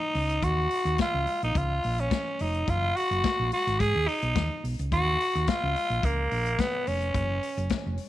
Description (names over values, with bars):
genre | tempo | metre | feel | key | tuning
disco | 107 BPM | 4/4 | straight | Eb minor | A4 = 440 Hz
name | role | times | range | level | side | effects
growling tenor saxophone | melody | 0.0-8.0 s | Bb3 to Ab4 | -27 LUFS | equal | none
vintage drum kit | drums | 0.1-8.1 s | hi-hat, kick drum, snare drum | -32 LUFS | left 3 dB | none
hollow-body short-scale fingered electric bass | bass | 0.2-8.0 s | F1 to Ab2 | -29 LUFS | right 1 dB | none
room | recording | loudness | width
light reverb | 1960s-style stereo | -24 LUFS | side -14 dB against mid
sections
0.0-8.1 A section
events
none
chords
0.4 Ebm7; 1.6 Db6; 2.7 Gbadd9; 3.8 Abm; 4.9 Ebm9; 6.0 Db6; 7.1 Gb5